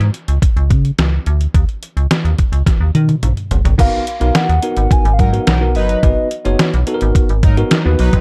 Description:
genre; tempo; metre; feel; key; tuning
early-eighties boogie funk; 107 BPM; 4/4; straight; G# dorian; A4 = 440 Hz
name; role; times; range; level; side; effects
metallic FM bass; bass; 0.0-8.2 s; F#1 to D#3; -16 LUFS; equal; none
detuned 8-bit digital drum machine; drums; 0.0-8.2 s; crash cymbal, hi-hat, kick drum, snare drum, toms; -17 LUFS; equal; none
hollow clarinet-like synth lead; melody; 3.8-6.9 s; D#5 to G#5; -23 LUFS; equal; chorus
bell-like tine electric piano; accompaniment; 3.8-8.1 s; B3 to C#5; -23 LUFS; equal; tube saturation
analog synth brass; second line; 5.2-8.2 s; F#3 to B4; -24 LUFS; equal; chorus
room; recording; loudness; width
digital ambience; dark, warm production; -14 LUFS; mono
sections
0.0-3.8 A section; 3.8-8.2 B section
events
drum fill 2.7-3.8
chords
0.0 N.C.; 1.5 D#7(no3); 3.8 G#m9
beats
0.42 0.98 | 1.54 2.10 2.67 3.23 | 3.79 4.35 4.91 5.47 | 6.03 6.59 7.15 7.71

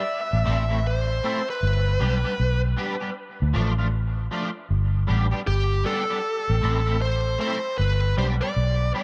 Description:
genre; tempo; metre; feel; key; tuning
dub reggae; 78 BPM; 4/4; swing 64% on 16ths; A minor; A4 = 440 Hz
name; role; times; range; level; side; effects
bluesy overdriven lead guitar; melody; 0.0-8.9 s; G4 to E5; -30 LUFS; equal; distortion, dub echo
vintage muted fingered electric bass; bass; 0.3-8.9 s; G1 to D2; -24 LUFS; equal; none
electric guitar at the edge of break-up; accompaniment; 0.4-9.0 s; F3 to A4; -32 LUFS; equal; ensemble chorus, dub echo
room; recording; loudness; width
light reverb; none; -24 LUFS; mono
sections
0.1-9.0 A section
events
none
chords
0.1 Am; 1.6 G; 3.2 Dm; 4.7 G; 6.2 Am; 7.8 G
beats
| 0.07 0.84 1.61 2.38 | 3.15 3.93 4.70 5.47 | 6.24 7.01 7.78 8.55

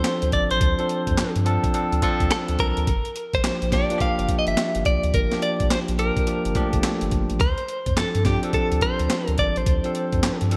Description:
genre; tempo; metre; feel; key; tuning
R&B, new jack swing; 106 BPM; 4/4; swing 64% on 16ths; D minor; A4 = 440 Hz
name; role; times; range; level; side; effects
direct-recorded clean electric guitar; melody; 0.0-10.4 s; G4 to F5; -28 LUFS; equal; tremolo, delay
barky tine electric piano; accompaniment; 0.0-10.6 s; F3 to A4; -28 LUFS; equal; none
round analog bass; bass; 0.0-10.6 s; G1 to G2; -27 LUFS; equal; none
breakbeat sampler-style drum kit; drums; 0.0-10.6 s; handclaps, hi-hat, kick drum, snare drum; -27 LUFS; equal; gated reverb
room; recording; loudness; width
light reverb; bright 1980s-style digital production; -22 LUFS; mono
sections
0.0-10.6 A section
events
none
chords
0.0 Dm7; 2.9 Gm7; 7.4 Dm7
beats
0.04 | 0.61 1.18 1.74 2.31 | 2.87 3.44 4.00 4.57 | 5.14 5.70 6.27 6.83 | 7.40 7.97 8.53 9.10 | 9.67 10.23

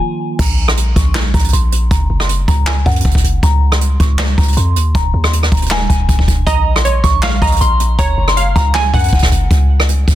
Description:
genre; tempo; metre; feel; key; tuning
hip hop, trap; 158 BPM; 4/4; half-time; Bb minor; A4 = 440 Hz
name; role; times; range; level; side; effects
soft synth bell; melody; 0.0-9.5 s; Gb5 to Db6; -20 LUFS; equal; chorus, phaser, low-pass filter, tape echo
warm 808-style bass; bass; 0.4-10.2 s; Eb1 to Gb2; -14 LUFS; equal; none
jazz brush drum kit; drums; 0.4-10.2 s; crash cymbal, handclaps, hi-hat, kick drum, rim click, snare drum; -14 LUFS; equal; soft clipping on snare
glassy wavetable pluck; second line; 6.5-9.1 s; Db5 to Ab5; -21 LUFS; right 2 dB; chorus, tape echo
room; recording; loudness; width
little or no reverb; dense, heavily limited modern master; -11 LUFS; side -13 dB against mid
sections
0.4-10.2 A section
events
stop 0.0-0.4; filter sweep on synth bell 0.4-6.5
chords
0.4 Bbm; 1.9 Gb5; 3.4 Db; 4.9 Ebsus4; 6.5 Bbm; 8.0 Gb5; 9.5 N.C.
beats
0.01 | 0.39 0.77 1.15 1.53 | 1.91 2.29 2.67 3.05 | 3.43 3.81 4.19 4.57 | 4.95 5.33 5.71 6.09 | 6.47 6.85 7.23 7.61 | 7.99 8.37 8.75 9.13 | 9.51 9.88

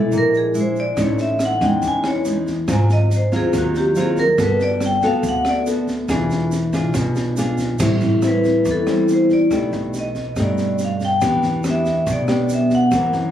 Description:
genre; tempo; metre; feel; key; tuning
bossa nova; 141 BPM; 4/4; straight; unclear; A4 = 438 Hz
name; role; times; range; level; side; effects
vibraphone with medium hard mallets; melody; 0.0-5.6, 8.3-13.1 s; F#4 to G#5; -20 LUFS; left 1 dB; none
nylon-string guitar; accompaniment; 0.0-13.3 s; F#2 to A4; -19 LUFS; left 1 dB; none
upright bass; bass; 0.0-13.3 s; E1 to G2; -24 LUFS; right 1 dB; none
tube shaker; percussion; 0.1-13.3 s; none; -40 LUFS; right 6 dB; none
compact cocktail drum kit; drums; 1.0-13.2 s; crash cymbal, kick drum, rim click, snare drum; -27 LUFS; equal; none
room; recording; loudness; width
light reverb; recorded on a phone in the room, club reverb; -16 LUFS; side -10 dB against mid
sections
0.0-7.8 A section; 7.8-13.3 A section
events
vibraphone solo 0.0-7.8, 7.8-13.3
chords
0.1 Bb7#11; 1.0 Amaj7#11; 2.7 G#6; 4.4 Gmaj9; 6.1 E7b9; 7.8 Am7; 9.5 B7alt; 11.2 Em7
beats
0.12 0.55 | 0.97 1.40 1.83 2.25 | 2.68 3.11 3.53 3.96 | 4.39 4.81 5.24 5.67 | 6.09 6.52 6.95 7.37 | 7.80 8.23 8.65 9.08 | 9.51 9.93 10.36 10.79 | 11.21 11.64 12.06 12.49 | 12.92

